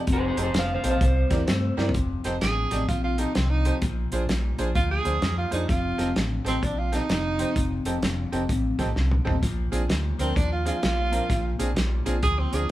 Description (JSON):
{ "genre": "electric blues shuffle", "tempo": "128 BPM", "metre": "4/4", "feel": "swing 63% on 8ths", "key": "F mixolydian", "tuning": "A4 = 440 Hz", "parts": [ { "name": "electric guitar at the edge of break-up", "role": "riff", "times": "0.0-12.7 s", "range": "F2 to A3", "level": "-31 LUFS", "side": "left 3 dB", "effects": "none" }, { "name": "electric guitar through a small old amp", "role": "melody", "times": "0.1-1.9 s", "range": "Ab4 to F5", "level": "-28 LUFS", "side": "right 2 dB", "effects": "spring reverb" }, { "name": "fingered electric bass", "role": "bass", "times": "0.1-12.7 s", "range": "F1 to G2", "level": "-26 LUFS", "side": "equal", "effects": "none" }, { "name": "warm soul drum kit", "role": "drums", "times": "0.1-12.6 s", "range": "hi-hat, kick drum, snare drum, toms", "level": "-27 LUFS", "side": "equal", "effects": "none" }, { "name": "tack piano", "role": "accompaniment", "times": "0.4-12.6 s", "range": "C4 to Eb5", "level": "-32 LUFS", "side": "right 2 dB", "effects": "none" }, { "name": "warm tenor saxophone", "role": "second line", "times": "2.4-12.7 s", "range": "C4 to Ab4", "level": "-28 LUFS", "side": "right 3 dB", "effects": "none" } ], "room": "light reverb", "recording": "band playing live in one room", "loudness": "-22 LUFS", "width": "side -15 dB against mid", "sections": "0.0-1.9 A section; 1.9-12.7 A section", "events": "clean electric guitar solo 0.0-1.9; drum fill 1.7, 9.0-9.4; tenor saxophone solo 1.9-12.7", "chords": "0.0 F7; 1.0 C7; 1.9 F7; 3.8 Bb7; 5.7 F7; 9.4 Bb7" }